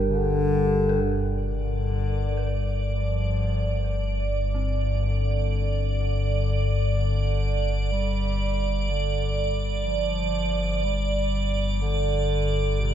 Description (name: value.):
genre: dark ambient drone.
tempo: 62 BPM.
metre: 4/4.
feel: straight.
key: G minor.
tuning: A4 = 440 Hz.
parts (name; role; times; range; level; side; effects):
dark analog pad; sustained chords; 0.0-1.1 s; G3 to G5; -29 LUFS; left 1 dB; chorus.
dark detuned synth bell; arpeggios; 0.0-12.9 s; C4 to Bb4; -36 LUFS; right 2 dB; chorus, ping-pong delay.
deep rumbling drone; drone; 0.0-12.9 s; G1 to G2; -25 LUFS; equal; built-in reverb.
mellow bass clarinet; melody; 0.1-12.9 s; C3 to G3; -30 LUFS; left 2 dB; ping-pong delay.
icy glass pad; texture; 1.5-12.9 s; D5; -29 LUFS; right 4 dB; chorus, built-in reverb.
room: moderate plate reverb, RT60 2.4 s.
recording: dreamy mix soaked in reverb.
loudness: -22 LUFS.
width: side -10 dB against mid.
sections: 0.0-1.0 A section; 1.0-12.9 B section.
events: fade-in on synth bell 1.0-12.9; fade-in on bass clarinet 1.0-12.9.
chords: 0.0 G5.